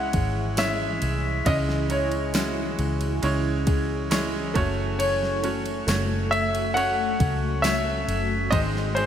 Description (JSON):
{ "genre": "pop ballad", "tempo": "68 BPM", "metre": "4/4", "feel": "straight", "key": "C# harmonic minor", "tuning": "A4 = 440 Hz", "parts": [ { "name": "clear concert grand piano", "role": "melody", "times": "0.0-9.1 s", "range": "B#4 to F#5", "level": "-26 LUFS", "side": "left 2 dB", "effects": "ping-pong delay" }, { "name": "bright upright piano", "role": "accompaniment", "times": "0.0-9.1 s", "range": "G#2 to D#5", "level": "-29 LUFS", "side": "right 4 dB", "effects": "none" }, { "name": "shimmering ambient pad", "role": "sustained chords", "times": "0.0-9.1 s", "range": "E3 to G#4", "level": "-33 LUFS", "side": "equal", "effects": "chorus, built-in reverb, phaser" }, { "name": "picked steel-string acoustic guitar", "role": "arpeggios", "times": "0.0-9.1 s", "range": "F#2 to A4", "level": "-34 LUFS", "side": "left 7 dB", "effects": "none" }, { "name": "vintage muted fingered electric bass", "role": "bass", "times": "0.0-9.1 s", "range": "F#1 to C#2", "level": "-28 LUFS", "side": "equal", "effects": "none" }, { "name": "smooth R&B drum kit", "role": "drums", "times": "0.1-9.1 s", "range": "kick drum, ride cymbal, snare drum", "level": "-30 LUFS", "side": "equal", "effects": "gated reverb" }, { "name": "tambourine", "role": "percussion", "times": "0.6-7.8 s", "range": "none", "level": "-38 LUFS", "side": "left 8 dB", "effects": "none" } ], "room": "moderate lush hall reverb, RT60 2.9 s", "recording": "bright 1980s-style digital production", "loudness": "-22 LUFS", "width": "side -9 dB against mid", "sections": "0.0-9.1 A section", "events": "upright piano fill 3.7-5.0", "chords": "0.0 C#m; 4.6 F#m; 8.5 G#" }